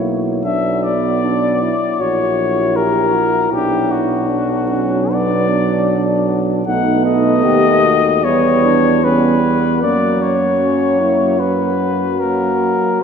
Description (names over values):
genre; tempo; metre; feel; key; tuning
classical, hymn-like piece for brass band; 76 BPM; 4/4; rubato; B minor; A4 = 440 Hz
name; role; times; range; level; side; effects
mellow cornet; melody; 0.0-13.0 s; F#4 to F#5; -17 LUFS; left 5 dB; none
mellow French horn section; second line; 0.0-13.0 s; A#3 to E4; -21 LUFS; right 9 dB; none
clear euphonium; accompaniment; 0.0-13.0 s; A#3 to G4; -20 LUFS; left 2 dB; none
clear trombone; accompaniment; 0.0-13.0 s; F#3 to A3; -23 LUFS; right 4 dB; none
warm tuba; bass; 0.0-12.8 s; A#1 to F#2; -20 LUFS; right 1 dB; none
room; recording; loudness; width
wet church reverb, RT60 3.2 s; none; -13 LUFS; side -6 dB against mid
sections
0.0-13.0 A section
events
none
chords
0.5 Bm; 2.0 F#7/A#; 3.5 Bm; 6.7 B7; 8.2 Em; 9.8 F#